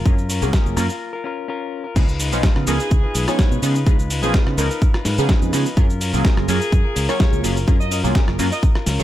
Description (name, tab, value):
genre	filtered disco house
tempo	126 BPM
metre	4/4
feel	straight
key	F# major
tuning	A4 = 438 Hz
part	direct-recorded clean electric guitar	riff	0.0-9.0 s	G#3 to B4	-28 LUFS	left 6 dB	sidechain pumping, low-pass filter
part	fingered electric bass	bass	0.0-9.0 s	F#1 to C#3	-22 LUFS	equal	sidechain pumping, low-pass filter
part	funky polysynth comp	accompaniment	0.1-9.0 s	E#3 to A#4	-24 LUFS	right 2 dB	chorus, phaser, sidechain pumping, low-pass filter
part	dusty soul sampler-style drum kit	drums	0.1-9.0 s	crash cymbal, hi-hat, rim click, shaker, snare drum	-25 LUFS	equal	sidechain pumping on hats, sidechain pumping on perc, sidechain pumping on cymbals
part	electronic kick drum	drums	0.1-8.7 s	none	-16 LUFS	equal	none
part	bright horn section	melody	2.7-8.7 s	G#4 to D#5	-27 LUFS	equal	vintage 12-bit sampler grit, sidechain pumping, low-pass filter, digital delay
room	digital ambience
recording	none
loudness	-16 LUFS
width	side -13 dB against mid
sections	0.0-2.0 A section; 2.0-9.0 B section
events	filter sweep 0.0-2.0; break 1.0-2.0; drop 2.0-9.0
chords	0.0 F#maj7; 2.0 C#9; 5.8 F#maj7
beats	| 0.06 0.53 1.01 1.49 | 1.96 2.44 2.92 3.39 | 3.87 4.34 4.82 5.30 | 5.77 6.25 6.72 7.20 | 7.68 8.15 8.63